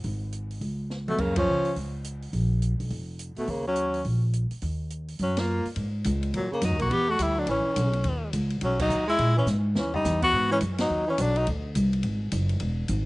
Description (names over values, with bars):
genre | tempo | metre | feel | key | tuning
jazz, small-group swing and bop | 210 BPM | 4/4 | swing 62% on 8ths | Eb minor, G# minor from 5.8 s | A4 = 440 Hz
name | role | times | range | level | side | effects
upright bass | bass | 0.0-13.1 s | E1 to Db3 | -27 LUFS | equal | none
open jazz drum kit | drums | 0.0-13.0 s | crash cymbal, hi-hat, kick drum, ride cymbal, snare drum, toms | -36 LUFS | equal | none
clear tenor saxophone | melody | 1.1-11.5 s | F#3 to G4 | -26 LUFS | left 1 dB | none
warm baritone saxophone | second line | 1.1-11.5 s | A#2 to B3 | -30 LUFS | right 2 dB | slapback echo
room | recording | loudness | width
little or no reverb | recorded outdoors, with no room sound, nothing above 10.4 kHz | -24 LUFS | side -21 dB against mid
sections
0.0-5.8 A section; 5.8-13.1 B section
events
drum fill 0.9, 9.5-10.0; band accent 1.3, 5.3, 8.8, 10.8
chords
0.0 N.C.; 1.2 Gb5; 2.3 Bb5; 3.5 Ebm7; 5.8 G#m7; 6.9 D69; 7.5 Aadd9; 8.0 B; 9.2 A#7(b5, no3); 9.8 D#; 10.3 G#m7; 11.5 D7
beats
| 0.04 0.32 0.61 0.90 | 1.19 1.47 1.76 2.04 | 2.33 2.62 2.90 3.19 | 3.48 3.76 4.05 4.34 | 4.62 4.91 5.19 5.48 | 5.76 6.05 6.34 6.62 | 6.91 7.19 7.48 7.76 | 8.05 8.33 8.62 8.90 | 9.19 9.47 9.76 10.04 | 10.33 10.62 10.90 11.19 | 11.47 11.76 12.04 12.33 | 12.61 12.90